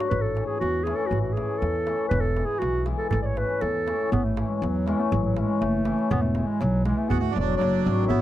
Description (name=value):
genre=balkan folk, Balkan wedding band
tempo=120 BPM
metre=2/4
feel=straight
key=A major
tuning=A4 = 440 Hz
part: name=mellow clarinet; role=melody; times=0.0-8.2 s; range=F#3 to D5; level=-26 LUFS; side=right 2 dB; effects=none
part: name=cimbalom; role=accompaniment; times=0.0-8.2 s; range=D3 to E4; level=-29 LUFS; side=left 8 dB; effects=none
part: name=darbuka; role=percussion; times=0.0-8.2 s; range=none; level=-31 LUFS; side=right 3 dB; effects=none
part: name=upright bass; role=bass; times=0.1-8.2 s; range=E1 to E2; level=-27 LUFS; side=equal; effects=none
part: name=accordion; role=second line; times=7.1-8.2 s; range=D4 to F#4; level=-29 LUFS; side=right 15 dB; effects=none
room=little or no reverb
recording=dry, close 1970s-style studio recording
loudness=-22 LUFS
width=side -13 dB against mid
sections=0.0-4.1 A section; 4.1-8.2 A section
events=none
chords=0.1 A; 2.1 E; 3.1 A; 6.1 E; 7.1 D